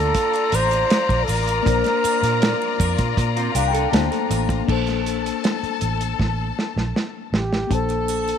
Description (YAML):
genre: lush 1970s-style soul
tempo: 79 BPM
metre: 4/4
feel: straight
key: Bb major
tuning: A4 = 441 Hz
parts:
  - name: breathy flugelhorn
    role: melody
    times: 0.0-8.4 s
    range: G4 to C5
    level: -22 LUFS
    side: right 2 dB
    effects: none
  - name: clear studio violin section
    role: second line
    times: 0.0-8.4 s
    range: F4 to Bb5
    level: -26 LUFS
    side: left 12 dB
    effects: none
  - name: mellow reed electric piano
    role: accompaniment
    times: 0.0-8.4 s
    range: A3 to Bb5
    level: -27 LUFS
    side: left 15 dB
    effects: fast tremolo
  - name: vintage muted fingered electric bass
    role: bass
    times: 0.0-8.3 s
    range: A1 to Bb2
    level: -24 LUFS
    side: right 1 dB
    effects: none
  - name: warm soul drum kit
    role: drums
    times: 0.1-8.4 s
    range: crash cymbal, hi-hat, kick drum, rim click, snare drum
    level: -23 LUFS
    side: right 2 dB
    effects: none
  - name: triangle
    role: percussion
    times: 0.2-8.4 s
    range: none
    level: -34 LUFS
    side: right 20 dB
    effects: none
  - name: mellow electric guitar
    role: riff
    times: 3.4-4.7 s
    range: C4 to A4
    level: -27 LUFS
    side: right 15 dB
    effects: none
room: light reverb, small room ambience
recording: 1960s-style stereo with parts hard left and right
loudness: -18 LUFS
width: side -8 dB against mid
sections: 0.0-4.7 A section; 4.7-7.7 B section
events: reed electric piano fill 3.2-4.7; drum fill 6.2-7.7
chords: 0.0 Bbmaj9